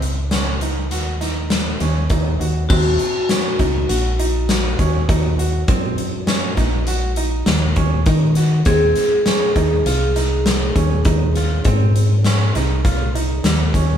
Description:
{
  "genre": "progressive instrumental, band music in an uneven meter",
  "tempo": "100 BPM",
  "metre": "5/4",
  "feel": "straight",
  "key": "Eb dorian",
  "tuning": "A4 = 440 Hz",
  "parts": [
    { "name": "bright baby grand piano", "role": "arpeggios", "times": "0.0-14.0 s", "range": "C4 to Gb4", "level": "-26 LUFS", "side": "right 5 dB", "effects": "none" },
    { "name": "solid FM bass", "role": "bass", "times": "0.0-14.0 s", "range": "Bb1 to Eb3", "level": "-18 LUFS", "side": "equal", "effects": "none" },
    { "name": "big rock drum kit", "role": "drums", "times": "0.0-13.9 s", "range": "crash cymbal, hi-hat, kick drum, snare drum", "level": "-20 LUFS", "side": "equal", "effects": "none" },
    { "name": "vibraphone with hard mallets", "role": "second line", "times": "2.7-14.0 s", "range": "Gb4 to Ab4", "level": "-22 LUFS", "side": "left 1 dB", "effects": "none" }
  ],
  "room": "moderate large studio reverb, RT60 1.1 s",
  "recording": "band playing live in one room",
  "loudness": "-15 LUFS",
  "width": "side -9 dB against mid",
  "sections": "0.0-2.7 A section; 2.7-14.0 B section",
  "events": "none",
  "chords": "0.0 Ebm7; 8.7 Fm"
}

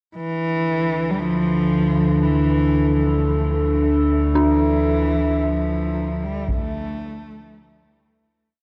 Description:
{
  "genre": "dark ambient drone",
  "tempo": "57 BPM",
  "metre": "4/4",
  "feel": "straight",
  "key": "D minor",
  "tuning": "A4 = 440 Hz",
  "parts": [
    { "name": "deep rumbling drone", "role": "drone", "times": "1.0-8.6 s", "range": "D2 to D3", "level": "-25 LUFS", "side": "equal", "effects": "built-in reverb, phaser" },
    { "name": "dark cello", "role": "melody", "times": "0.2-8.1 s", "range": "E3 to A3", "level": "-26 LUFS", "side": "equal", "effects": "diffuse ambient delay" },
    { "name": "dark analog pad", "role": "sustained chords", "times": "0.2-8.6 s", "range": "D4 to E5", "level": "-25 LUFS", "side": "equal", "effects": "subtle chorus" },
    { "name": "dark detuned synth bell", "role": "arpeggios", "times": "4.4-8.6 s", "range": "D4", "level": "-26 LUFS", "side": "equal", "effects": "chorus" },
    { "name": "taiko ensemble", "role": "percussion", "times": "6.5-6.7 s", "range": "none", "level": "-28 LUFS", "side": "equal", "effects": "low-pass filter on perc" }
  ],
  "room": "wet huge ambient reverb, RT60 7.5 s",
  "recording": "worn, warbling old tape, cassette tape, warbly pitch drift",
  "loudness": "-20 LUFS",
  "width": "mono",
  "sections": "0.1-8.6 A section",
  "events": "fade-out 4.4-8.6",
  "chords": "0.1 Dsus2"
}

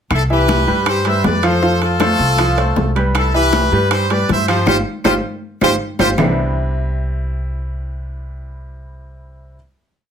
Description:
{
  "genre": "latin, salsa",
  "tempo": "158 BPM",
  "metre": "4/4",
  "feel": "straight",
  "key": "C major",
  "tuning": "A4 = 440 Hz",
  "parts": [
    { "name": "brilliant horn section", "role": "melody", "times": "0.1-6.1 s", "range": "E4 to E5", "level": "-18 LUFS", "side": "left 2 dB", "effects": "none" },
    { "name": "upright bass", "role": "bass", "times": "0.1-9.6 s", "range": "G1 to G2", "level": "-20 LUFS", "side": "equal", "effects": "none" },
    { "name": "bongos", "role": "percussion", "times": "0.1-6.3 s", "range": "none", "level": "-24 LUFS", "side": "left 8 dB", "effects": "none" },
    { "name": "claves", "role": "percussion", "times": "0.1-6.3 s", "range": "none", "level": "-29 LUFS", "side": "right 1 dB", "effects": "none" },
    { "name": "congas", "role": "percussion", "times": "0.1-6.3 s", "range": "none", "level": "-24 LUFS", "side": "left 2 dB", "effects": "none" },
    { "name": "timbales", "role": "percussion", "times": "0.1-6.3 s", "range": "none", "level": "-23 LUFS", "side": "right 7 dB", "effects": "none" },
    { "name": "bright upright piano", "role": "accompaniment", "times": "0.3-9.6 s", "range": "C3 to F5", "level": "-19 LUFS", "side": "right 1 dB", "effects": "none" }
  ],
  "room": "moderate studio reverb, RT60 0.6 s",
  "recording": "none",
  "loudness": "-14 LUFS",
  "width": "side -8 dB against mid",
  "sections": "0.1-6.2 verse; 6.2-9.2 final chord",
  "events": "band accent 4.7-6.2; drum fill 5.2-6.2",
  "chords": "0.1 Cmaj7; 1.6 Fadd9; 3.1 Cmaj7; 4.7 G7sus4; 6.2 Cmaj9"
}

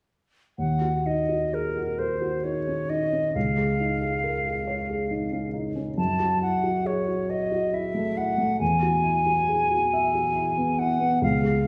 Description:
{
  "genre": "classical, impressionist duo for flute and grand piano",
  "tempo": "46 BPM (dotted quarters)",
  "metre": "6/8",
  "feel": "rubato",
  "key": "unclear",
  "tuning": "A4 = 441 Hz",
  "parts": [
    { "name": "silver concert flute", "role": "melody", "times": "0.6-11.7 s", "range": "Bb4 to A5", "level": "-28 LUFS", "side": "equal", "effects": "none" },
    { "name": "dark baby grand piano", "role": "accompaniment", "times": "0.6-11.7 s", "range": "Db2 to E5", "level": "-28 LUFS", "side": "equal", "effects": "none" }
  ],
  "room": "wet recital hall reverb, RT60 1.4 s",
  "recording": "heard from further back in the room",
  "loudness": "-25 LUFS",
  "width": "mono",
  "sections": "0.6-11.7 A section",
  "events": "none",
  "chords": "0.6 Ebm7; 3.4 Dbadd9; 6.0 Gbm7; 8.6 Eadd9"
}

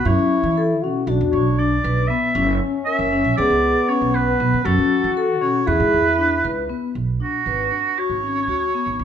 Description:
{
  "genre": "contemporary instrumental, chamber music in an uneven meter",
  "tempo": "235 BPM (eighths)",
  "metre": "9/8",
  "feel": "straight",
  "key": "B dorian",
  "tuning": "A4 = 440 Hz",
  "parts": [
    { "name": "warm oboe", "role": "melody", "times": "0.0-9.0 s", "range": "F#4 to E5", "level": "-21 LUFS", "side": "right 3 dB", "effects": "none" },
    { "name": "warm French horn", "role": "second line", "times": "0.0-6.7 s", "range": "B3 to F#4", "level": "-22 LUFS", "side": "left 3 dB", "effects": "none" },
    { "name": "upright bass", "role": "bass", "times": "0.0-9.0 s", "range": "F#1 to F#3", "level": "-23 LUFS", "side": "right 3 dB", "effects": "none" },
    { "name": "vibraphone with medium hard mallets", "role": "arpeggios", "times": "0.1-9.0 s", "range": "B3 to B4", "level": "-22 LUFS", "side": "left 4 dB", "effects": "none" }
  ],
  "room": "moderate recital hall reverb, RT60 1.6 s",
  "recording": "minimal, uncompressed stereo recording",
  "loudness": "-17 LUFS",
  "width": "side -8 dB against mid",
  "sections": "0.0-7.0 A section; 7.0-9.0 B section",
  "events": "none",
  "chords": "0.1 F#m7; 1.1 Bm; 2.4 F#7; 3.4 C#5; 4.7 F#m7; 5.7 E7; 7.0 Bmadd9"
}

